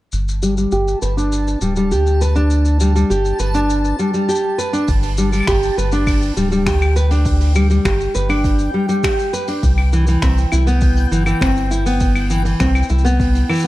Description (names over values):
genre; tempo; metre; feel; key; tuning
folktronica; 101 BPM; 4/4; straight; G major; A4 = 440 Hz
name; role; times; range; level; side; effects
round analog bass; bass; 0.1-13.4 s; D1 to D2; -16 LUFS; equal; tube saturation
vintage brush drum kit; drums; 0.1-13.7 s; claves, finger snaps, hi-hat, shaker; -27 LUFS; left 2 dB; none
backwards swelling texture; texture; 1.0-13.7 s; G5 to A5; -28 LUFS; equal; built-in reverb
nylon-string guitar; arpeggios; 0.4-13.7 s; E3 to B4; -18 LUFS; equal; low-pass filter, tape echo
electronic kick drum; drums; 4.9-13.3 s; none; -19 LUFS; equal; none
room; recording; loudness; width
small room ambience; dark, warm production; -14 LUFS; side -16 dB against mid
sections
0.1-4.9 A section; 4.9-13.7 B section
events
filter sweep on analog synth bass 0.1-4.9; filter sweep on nylon-string guitar 0.1-4.9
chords
0.1 G5; 9.6 Cmaj7